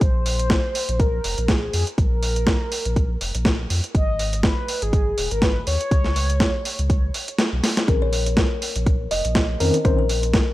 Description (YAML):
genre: deep house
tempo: 122 BPM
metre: 4/4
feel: swing 56% on 16ths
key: Bb minor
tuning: A4 = 440 Hz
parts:
  - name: mellow horn-like synth lead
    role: melody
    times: 0.0-7.4 s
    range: Ab4 to Eb5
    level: -27 LUFS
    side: left 1 dB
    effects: analog chorus, cassette tape, analog delay
  - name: warm sub bass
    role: bass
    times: 0.0-10.4 s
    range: Eb1 to F2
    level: -24 LUFS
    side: equal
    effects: sidechain pumping
  - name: dusty soul sampler-style drum kit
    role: drums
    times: 0.0-10.4 s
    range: hi-hat, snare drum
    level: -23 LUFS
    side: equal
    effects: overdrive, studio reverb
  - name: electronic kick drum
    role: drums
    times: 0.0-10.4 s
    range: none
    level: -21 LUFS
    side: equal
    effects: studio reverb
  - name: kalimba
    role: melody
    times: 7.9-10.1 s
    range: Bb4 to Eb5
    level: -26 LUFS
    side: left 4 dB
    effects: tape echo
  - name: mellow FM electric piano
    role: stabs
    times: 7.9-10.0 s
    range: Eb3 to C5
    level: -23 LUFS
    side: left 1 dB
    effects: chorus, tremolo, sidechain pumping
room: little or no reverb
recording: dry, gritty hardware recording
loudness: -18 LUFS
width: side -16 dB against mid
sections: 0.0-10.5 A section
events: kick drops out 7.4-7.9; drum fill 7.6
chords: 0.0 Bbsus2; 3.9 Ab5; 5.9 N.C.; 7.9 Bbmadd9